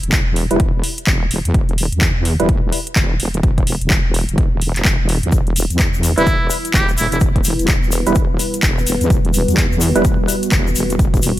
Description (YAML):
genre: bass house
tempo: 127 BPM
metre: 4/4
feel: swing 61% on 16ths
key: E minor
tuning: A4 = 440 Hz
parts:
  - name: wobble bass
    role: bass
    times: 0.0-11.4 s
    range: E1 to E2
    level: -19 LUFS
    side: equal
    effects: chorus, tube saturation, sidechain pumping
  - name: house drum kit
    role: drums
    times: 0.0-11.4 s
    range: handclaps, hi-hat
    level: -21 LUFS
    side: equal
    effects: overdrive
  - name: electronic kick drum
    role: drums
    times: 0.1-11.2 s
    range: none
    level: -17 LUFS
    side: equal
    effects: overdrive
  - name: percussive organ stab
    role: stabs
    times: 0.5-2.5, 6.2-10.0 s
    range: G3 to B4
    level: -20 LUFS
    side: right 2 dB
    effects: lush chorus, sidechain pumping, ping-pong delay
  - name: dark analog pad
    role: sustained chords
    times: 5.3-11.4 s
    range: G3 to B4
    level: -23 LUFS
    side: equal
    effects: chorus, sidechain pumping
  - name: egg shaker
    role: percussion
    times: 5.3-11.3 s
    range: none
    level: -26 LUFS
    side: left 6 dB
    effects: none
  - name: trumpet with metal mute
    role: melody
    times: 6.2-7.2 s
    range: E4 to G4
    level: -21 LUFS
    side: right 1 dB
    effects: ping-pong delay
room: little or no reverb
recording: none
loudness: -14 LUFS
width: side -14 dB against mid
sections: 0.0-11.4 A section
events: filter sweep on synth stab 0.0-11.4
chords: 0.0 Em